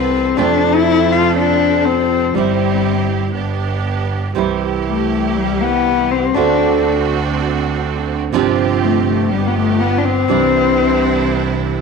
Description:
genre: tango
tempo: 121 BPM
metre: 4/4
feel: rubato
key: C major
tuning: A4 = 437 Hz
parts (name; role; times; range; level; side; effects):
- dark cello; second line; 0.0-11.8 s; G3 to F4; -16 LUFS; left 10 dB; none
- nylon-string guitar; accompaniment; 0.0-11.8 s; C3 to G4; -19 LUFS; right 11 dB; none
- bright studio string section; stabs; 0.0-11.8 s; F3 to B4; -22 LUFS; right 10 dB; slapback echo
- clear double bass; bass; 0.0-11.8 s; G1 to F2; -22 LUFS; right 2 dB; none
room: moderate echo chamber reverb, RT60 1.5 s, small room reverb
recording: 1960s-style stereo with parts hard left and right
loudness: -13 LUFS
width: side -5 dB against mid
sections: 0.0-11.8 A section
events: cello solo 0.0-11.8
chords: 0.4 F; 2.4 C/G; 3.4 G; 4.4 C; 6.4 D7; 8.3 G7sus4; 9.3 G7; 10.3 Cadd9

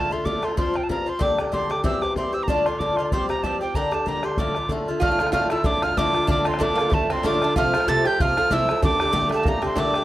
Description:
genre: celtic folk, Celtic reel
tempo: 189 BPM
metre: 4/4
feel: swing 55% on 8ths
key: D minor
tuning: A4 = 440 Hz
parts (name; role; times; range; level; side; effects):
- mellow wooden whistle; melody; 0.0-10.0 s; G5 to A6; -25 LUFS; right 1 dB; none
- Irish bouzouki; accompaniment; 0.0-10.0 s; G2 to G4; -24 LUFS; left 1 dB; none
- bodhran; percussion; 0.3-10.0 s; none; -26 LUFS; equal; none
- metal-body resonator slide guitar; second line; 5.0-10.0 s; A3 to A4; -26 LUFS; right 4 dB; none
room: light reverb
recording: dry, close 1970s-style studio recording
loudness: -20 LUFS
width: side -15 dB against mid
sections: 0.0-5.0 A section; 5.0-10.0 B section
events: none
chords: 0.0 Dm; 0.6 Fsus2; 1.2 Gm; 1.8 C; 2.5 Dm; 3.1 Fsus2; 3.8 Gm; 4.4 Dm; 7.6 F; 8.8 Gmadd9

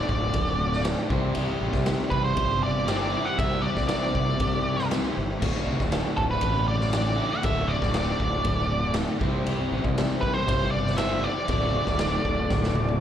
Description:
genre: classic rock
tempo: 118 BPM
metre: 4/4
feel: straight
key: D mixolydian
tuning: A4 = 440 Hz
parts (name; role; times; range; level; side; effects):
- octave-fuzz lead guitar; melody; 0.0-13.0 s; A4 to F#5; -28 LUFS; right 1 dB; distortion, slapback echo, analog delay
- picked twelve-string acoustic guitar; accompaniment; 0.0-13.0 s; C3 to G4; -39 LUFS; left 1 dB; none
- tonewheel organ; sustained chords; 0.0-13.0 s; G3 to E5; -37 LUFS; equal; none
- crunchy overdriven guitar; riff; 0.0-13.0 s; D2 to C5; -30 LUFS; equal; slapback echo
- fuzz fingered electric bass; bass; 0.1-13.0 s; D1 to C2; -28 LUFS; equal; overdrive
- raw garage drum kit; drums; 0.1-13.0 s; crash cymbal, kick drum, ride cymbal, snare drum, toms; -28 LUFS; equal; none
room: small room ambience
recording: live gig heard through the venue's PA, club reverb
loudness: -23 LUFS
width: side -10 dB against mid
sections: 0.0-13.0 A section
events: drum fill 12.5-13.0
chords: 0.0 D; 1.1 C; 5.4 D; 9.2 C; 11.5 D

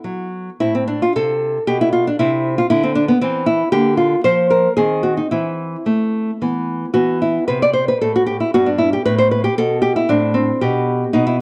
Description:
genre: classical, baroque-style dance for nylon-string guitar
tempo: 105-118 BPM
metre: 3/4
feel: rubato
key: A minor, E minor from 6.9 s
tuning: A4 = 441 Hz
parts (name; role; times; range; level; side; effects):
- nylon-string guitar; solo; 0.0-11.4 s; G2 to D5; -17 LUFS; equal; none
room: moderate spring reverb, RT60 1.5 s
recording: worn, warbling old tape, cassette tape, warbly pitch drift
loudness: -17 LUFS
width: mono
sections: 0.6-11.4 A section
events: none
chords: 0.0 E5; 0.6 Am; 2.2 Cadd9; 3.7 Bb/D; 4.8 G#7/D#; 5.3 Am/E; 6.4 E5; 8.5 G69; 10.1 Amadd11; 10.6 N.C.

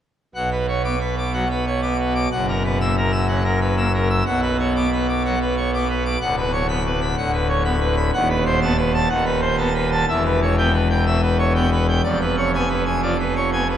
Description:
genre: classical, organ toccata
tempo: 123 BPM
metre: 4/4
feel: straight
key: B minor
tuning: A4 = 441 Hz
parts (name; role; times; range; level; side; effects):
- pipe organ, full organ; solo; 0.3-13.8 s; D1 to E6; -18 LUFS; equal; none
room: wet cathedral reverb, RT60 5.5 s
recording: none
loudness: -18 LUFS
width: side -10 dB against mid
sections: 0.3-13.8 A section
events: none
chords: 0.3 Bm; 2.3 F#7; 4.3 Bm; 6.2 Bm/D; 8.1 B7/D#; 10.1 Em; 12.0 Fdim7

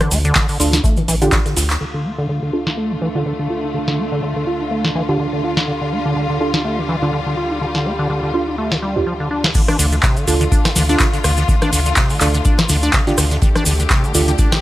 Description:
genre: acid house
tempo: 124 BPM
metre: 4/4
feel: swing 56% on 16ths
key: D minor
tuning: A4 = 440 Hz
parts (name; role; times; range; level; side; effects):
- deep acid bass; riff; 0.0-14.6 s; D2 to F4; -21 LUFS; equal; analog delay
- booming analog drum machine; drums; 0.0-14.6 s; congas, crash cymbal, handclaps, hi-hat, rim click, snare drum; -19 LUFS; equal; low-pass filter on snare, low-pass filter on hats, low-pass filter on perc, low-pass filter on cymbals
- cabasa; percussion; 0.0-1.8, 9.5-14.6 s; none; -25 LUFS; left 2 dB; none
- round analog bass; bass; 0.1-14.3 s; A1 to D2; -22 LUFS; equal; tube saturation, sidechain pumping
- open jazz drum kit; drums; 0.1-1.8, 9.5-14.6 s; hi-hat, snare drum; -31 LUFS; right 2 dB; none
- electronic kick drum; drums; 0.4-1.4, 9.5-14.5 s; none; -17 LUFS; equal; none
- deep mellow chord stab; stabs; 0.6-14.3 s; D4 to A4; -22 LUFS; right 3 dB; chorus, analog delay
- rich studio string section; sustained chords; 1.8-14.6 s; D3 to G4; -24 LUFS; left 3 dB; sidechain pumping
- warbly tape-like pad; texture; 1.8-9.5 s; D4 to F5; -28 LUFS; right 4 dB; chorus, built-in reverb, sidechain pumping
room: light reverb, small room ambience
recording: none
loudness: -14 LUFS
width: side -15 dB against mid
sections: 0.0-1.8 A section; 1.8-9.5 B section; 9.5-14.6 A section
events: drop 0.0-1.8, 9.5-14.6; drum fill 1.3-1.8; band accent 1.7; filter sweep on synth stab 1.8-9.5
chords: 0.0 Dm

